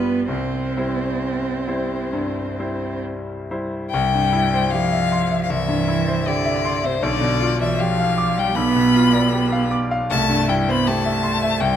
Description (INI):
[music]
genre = classical, slow romantic movement for piano trio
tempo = 64-82 BPM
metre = 4/4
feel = rubato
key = C major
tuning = A4 = 439 Hz
[part]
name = rich violin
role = melody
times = 0.0-11.8 s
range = B4 to B5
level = -24 LUFS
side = left 7 dB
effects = none
[part]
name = rich cello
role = second line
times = 0.0-11.8 s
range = C3 to C4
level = -22 LUFS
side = right 5 dB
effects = none
[part]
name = bright concert grand piano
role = accompaniment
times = 0.0-11.8 s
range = B1 to D6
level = -22 LUFS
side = left 2 dB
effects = none
[sound]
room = moderate recital hall reverb, RT60 1.4 s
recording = close, detailed microphones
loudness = -18 LUFS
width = side -9 dB against mid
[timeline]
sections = 0.0-3.9 A section; 3.9-11.8 B section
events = none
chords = 0.3 C; 7.0 G7/B; 10.1 C